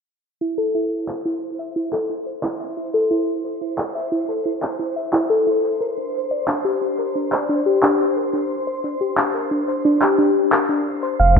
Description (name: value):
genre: IDM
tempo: 89 BPM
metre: 4/4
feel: straight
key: unclear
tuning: A4 = 440 Hz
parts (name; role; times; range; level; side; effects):
- harp-like synth pluck; arpeggios; 0.4-11.4 s; D4 to F5; -19 LUFS; left 1 dB; chorus, cassette tape, digital delay
- twinkling granular texture; texture; 1.4-11.4 s; C5; -30 LUFS; right 1 dB; built-in reverb
- electronic handclaps and finger snaps; drums; 1.1-11.4 s; none; -24 LUFS; equal; gated reverb
- warm sub bass; bass; 11.2-11.4 s; F1; -15 LUFS; right 1 dB; none
- electronic kick drum; drums; 11.4 s; none; -11 LUFS; right 1 dB; none
room: wet lush hall reverb, RT60 2.0 s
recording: bright 1980s-style digital production, low-pass filter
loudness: -18 LUFS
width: side -6 dB against mid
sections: 0.4-11.4 A section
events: filter sweep on synth pluck 0.4-11.4; filter sweep 0.4-11.4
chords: 0.4 Am/E; 5.8 Gm